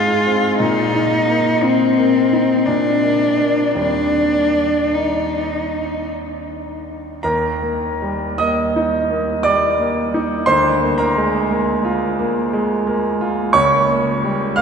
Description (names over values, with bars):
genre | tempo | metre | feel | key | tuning
classical, romantic duo for cello and grand piano | 51-60 BPM | 3/4 | rubato | Eb major | A4 = 444 Hz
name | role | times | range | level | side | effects
rich cello | melody | 0.0-6.1 s | C4 to F4 | -17 LUFS | left 1 dB | none
bright concert grand piano | accompaniment | 0.0-14.6 s | Db2 to F6 | -17 LUFS | right 1 dB | none
room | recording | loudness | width
wet cathedral reverb, RT60 6.6 s | recorded in a church or concert hall | -15 LUFS | side -6 dB against mid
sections
0.0-7.2 A section; 7.2-14.6 A section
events
none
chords
0.0 Fm/Ab; 0.6 Eb5/Bb; 2.7 N.C.; 3.8 Eb; 10.5 Bb7/D; 13.5 Eb7/Db (rootless)